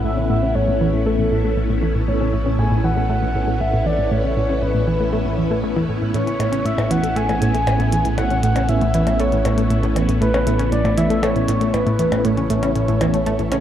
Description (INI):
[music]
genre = ambient, sequencer-driven space music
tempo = 118 BPM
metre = 4/4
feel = straight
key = A major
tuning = A4 = 441 Hz
[part]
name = soft octave-layered synth lead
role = melody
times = 0.0-13.6 s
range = A4 to G#5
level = -23 LUFS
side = equal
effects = chorus, shimmer reverb, analog delay
[part]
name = phased string machine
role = sustained chords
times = 0.0-13.6 s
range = A3 to B4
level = -23 LUFS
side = equal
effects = ensemble chorus, phaser, shimmer reverb
[part]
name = analog pluck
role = riff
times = 0.0-13.6 s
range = A2 to C#4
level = -21 LUFS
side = equal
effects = chorus, analog delay
[part]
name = analog drone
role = bass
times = 0.0-13.6 s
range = A1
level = -23 LUFS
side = equal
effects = chorus
[part]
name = electronic hi-hat and percussion blips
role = percussion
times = 6.1-13.6 s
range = none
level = -29 LUFS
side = left 2 dB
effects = none
[sound]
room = moderate plate reverb, RT60 3.0 s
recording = dark, warm production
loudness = -16 LUFS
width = side -10 dB against mid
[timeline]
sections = 0.0-13.6 A section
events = filter sweep on synth arpeggio sound 0.0-13.6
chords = 0.0 Aadd9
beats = | 0.04 0.55 1.06 1.57 | 2.08 2.59 3.09 3.60 | 4.11 4.62 5.13 5.64 | 6.14 6.65 7.16 7.67 | 8.18 8.69 9.20 9.70 | 10.21 10.72 11.23 11.74 | 12.25 12.76 13.26